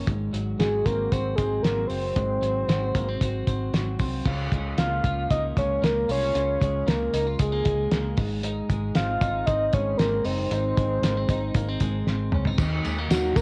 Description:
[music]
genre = jangly indie pop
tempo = 115 BPM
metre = 4/4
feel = straight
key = unclear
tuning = A4 = 440 Hz
[part]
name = twelve-string electric guitar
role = arpeggios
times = 0.0-13.4 s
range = Ab2 to G4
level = -33 LUFS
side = equal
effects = none
[part]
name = vintage muted fingered electric bass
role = bass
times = 0.0-13.4 s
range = Gb1 to Eb2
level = -32 LUFS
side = equal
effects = none
[part]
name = cloth-damped thuddy drum kit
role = drums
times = 0.1-13.4 s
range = crash cymbal, hi-hat, kick drum, ride cymbal, snare drum, toms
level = -28 LUFS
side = equal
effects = none
[part]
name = soft octave-layered synth lead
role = melody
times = 0.6-13.4 s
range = Gb4 to F5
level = -29 LUFS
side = equal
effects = chorus, cassette tape
[part]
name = string machine, cellos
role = sustained chords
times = 12.6-13.4 s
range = Bb3 to Gb4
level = -43 LUFS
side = equal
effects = none
[part]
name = tambourine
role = percussion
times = 12.6-13.4 s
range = none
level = -44 LUFS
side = equal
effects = none
[sound]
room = light reverb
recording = home recording on cassette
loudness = -25 LUFS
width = mono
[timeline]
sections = 0.0-4.3 A section; 4.3-12.6 B section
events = drum fill 12.1-12.6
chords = 0.1 Ab7; 4.3 Db6; 8.2 Ab; 12.6 Ebm

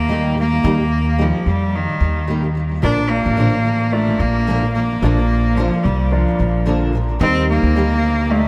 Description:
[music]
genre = pop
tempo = 110 BPM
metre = 4/4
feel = swing 55% on 16ths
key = Bb major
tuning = A4 = 439 Hz
[part]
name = clear cello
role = melody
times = 0.0-8.5 s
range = Eb3 to D4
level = -21 LUFS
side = equal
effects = analog delay
[part]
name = fingerpicked steel-string acoustic guitar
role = accompaniment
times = 0.0-8.5 s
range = Bb2 to Bb4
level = -25 LUFS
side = equal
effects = double-tracked
[part]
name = upright bass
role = bass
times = 0.0-8.5 s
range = A1 to F2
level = -21 LUFS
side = equal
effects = none
[part]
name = warm grand piano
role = accompaniment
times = 2.8-8.5 s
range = G3 to Eb5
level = -28 LUFS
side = equal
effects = none
[sound]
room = light reverb, small room ambience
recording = none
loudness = -17 LUFS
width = mono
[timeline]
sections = 0.0-8.5 A section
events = none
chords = 0.0 Eb; 2.8 Bb; 7.2 Eb

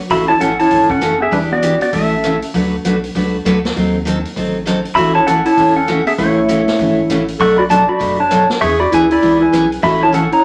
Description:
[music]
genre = country, western swing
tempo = 197 BPM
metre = 4/4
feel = swing 61% on 8ths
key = A major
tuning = A4 = 439 Hz
[part]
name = pedal steel guitar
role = melody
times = 0.1-2.4, 5.0-10.4 s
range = D4 to C#6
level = -17 LUFS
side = equal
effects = none
[part]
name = dark clarinet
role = second line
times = 0.1-2.4, 5.0-10.4 s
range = G3 to A4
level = -19 LUFS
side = equal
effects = none
[part]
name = picked steel-string acoustic guitar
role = accompaniment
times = 0.1-10.2 s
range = B2 to B4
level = -20 LUFS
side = equal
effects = none
[part]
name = rubbery square bass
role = bass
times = 0.1-10.3 s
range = E1 to E2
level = -31 LUFS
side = equal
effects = none
[part]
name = vintage drum kit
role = drums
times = 0.1-10.4 s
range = hi-hat, kick drum, rim click, snare drum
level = -30 LUFS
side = equal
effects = none
[sound]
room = wet studio reverb, RT60 0.6 s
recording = none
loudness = -14 LUFS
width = mono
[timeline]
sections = 0.0-10.4 A section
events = none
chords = 0.1 A6; 1.3 Em7; 1.9 A6; 2.5 D6; 3.8 D#dim7; 5.0 A6; 7.4 Bm7; 8.6 E6; 9.8 A6

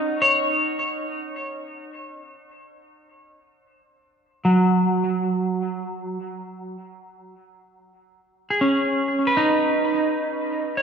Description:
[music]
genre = ambient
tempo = free time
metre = none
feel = none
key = B major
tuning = A4 = 436 Hz
[part]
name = clean electric guitar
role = solo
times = 0.0-10.8 s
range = F#3 to C#5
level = -20 LUFS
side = right 1 dB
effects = dub echo
[sound]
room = wet echo chamber reverb, RT60 2.3 s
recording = echo-heavy mix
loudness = -20 LUFS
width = side -6 dB against mid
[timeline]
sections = 0.0-10.8 A section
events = none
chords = 0.0 D#m7; 5.1 B

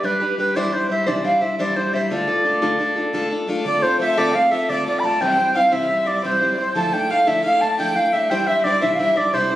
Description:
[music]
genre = celtic folk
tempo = 116 BPM (dotted quarters)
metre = 9/8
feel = straight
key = D dorian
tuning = A4 = 440 Hz
[part]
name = wooden flute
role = melody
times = 0.0-9.6 s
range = B4 to B5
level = -18 LUFS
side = right 1 dB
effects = none
[part]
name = picked plugged-in steel-string acoustic guitar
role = accompaniment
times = 0.0-9.6 s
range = C3 to C5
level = -23 LUFS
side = left 1 dB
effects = none
[part]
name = rich fiddle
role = second line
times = 3.7-9.6 s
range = C5 to A5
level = -26 LUFS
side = left 3 dB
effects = none
[sound]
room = moderate recital hall reverb, RT60 1.8 s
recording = recorded on a phone in the room, studio reverb, compression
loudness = -17 LUFS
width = side -14 dB against mid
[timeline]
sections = 0.0-3.7 A section; 3.7-9.6 A section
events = none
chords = 0.0 G; 0.6 Cadd9; 2.1 Dm; 3.7 Dm7; 5.2 C; 6.8 Dmadd9; 8.3 Cadd9

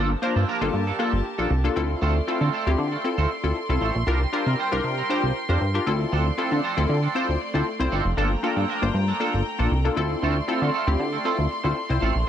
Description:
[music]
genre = funk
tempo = 117 BPM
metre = 4/4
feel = straight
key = D minor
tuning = A4 = 440 Hz
[part]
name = funky polysynth comp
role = accompaniment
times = 0.0-12.1 s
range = Bb3 to C5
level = -26 LUFS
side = left 3 dB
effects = chorus
[part]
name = warm studio string section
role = sustained chords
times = 0.0-12.3 s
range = A3 to C6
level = -31 LUFS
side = equal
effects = none
[part]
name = twangy electric guitar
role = riff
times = 0.0-12.2 s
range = F3 to C5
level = -29 LUFS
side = right 5 dB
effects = analog chorus
[part]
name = chorused synth bass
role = bass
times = 0.0-12.2 s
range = F1 to D3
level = -23 LUFS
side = equal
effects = none
[sound]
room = little or no reverb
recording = none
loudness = -21 LUFS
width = side -10 dB against mid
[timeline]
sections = 0.0-12.3 A section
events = none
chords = 0.0 Gm9; 1.8 Dm7; 4.1 C7sus4; 5.9 Dm7; 8.2 Gm9; 10.0 Dm7

